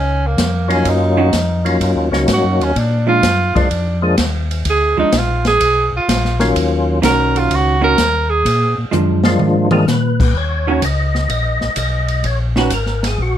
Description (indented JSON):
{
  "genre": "soul jazz organ trio",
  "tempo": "126 BPM",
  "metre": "4/4",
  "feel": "swing 68% on 8ths",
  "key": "Eb minor",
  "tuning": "A4 = 440 Hz",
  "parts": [
    { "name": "warm tenor saxophone", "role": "melody", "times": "0.0-8.8 s", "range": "Bb3 to Bb4", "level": "-16 LUFS", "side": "right 2 dB", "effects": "plate reverb" },
    { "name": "mellow tonewheel organ", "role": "bass", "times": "0.0-13.4 s", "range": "Ab1 to Bb2", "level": "-18 LUFS", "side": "left 1 dB", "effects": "chorus vibrato, slow rotary speaker" },
    { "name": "open jazz drum kit", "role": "drums", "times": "0.4-13.3 s", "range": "crash cymbal, hi-hat, kick drum, ride cymbal, snare drum, toms", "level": "-20 LUFS", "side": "left 1 dB", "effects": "none" },
    { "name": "percussive tonewheel organ", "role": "melody", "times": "0.7-13.4 s", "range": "Eb3 to Eb5", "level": "-18 LUFS", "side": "left 2 dB", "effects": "slow rotary speaker, chorus vibrato, plate reverb" },
    { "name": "vintage hollow-body jazz guitar", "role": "accompaniment", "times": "1.2-12.7 s", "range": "Eb3 to Gb4", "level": "-18 LUFS", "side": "right 4 dB", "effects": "none" }
  ],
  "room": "moderate studio reverb, RT60 0.5 s",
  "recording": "none",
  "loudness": "-13 LUFS",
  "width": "side -10 dB against mid",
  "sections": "0.0-10.3 A section; 10.3-13.4 B section",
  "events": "tenor saxophone solo 0.0-10.3; drum fill 8.9-9.9",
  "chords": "0.0 Ebm7; 2.8 Bb7; 6.5 Ebm7; 8.4 Bb7; 10.3 Eb7(no3)"
}